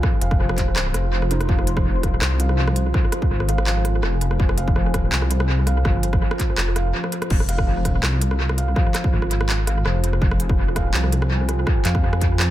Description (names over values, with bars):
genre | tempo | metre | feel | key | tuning
half-time drum and bass | 165 BPM | 4/4 | swing 53% on 16ths, half-time | F minor | A4 = 440 Hz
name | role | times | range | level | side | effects
deep dark ambient pad | sustained chords | 0.0-12.5 s | F4 to C6 | -30 LUFS | right 2 dB | chorus, built-in reverb, vintage 12-bit sampler grit, sidechain pumping
felt-muted upright piano | arpeggios | 0.0-12.5 s | F3 to F5 | -28 LUFS | right 1 dB | dub echo
electronic kick drum | drums | 0.0-12.3 s | none | -20 LUFS | equal | none
industrial drum kit | drums | 0.0-12.5 s | crash cymbal, handclaps, hi-hat, rim click | -26 LUFS | right 1 dB | dub echo
dark detuned saw bass | bass | 0.2-12.5 s | F1 to F2 | -21 LUFS | equal | none
room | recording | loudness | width
digital ambience | echo-heavy mix | -18 LUFS | side -14 dB against mid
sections
0.0-7.3 A section; 7.3-12.5 A section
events
drop 0.0-7.3, 7.3-12.5; break 6.9-7.3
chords
0.0 Fmadd9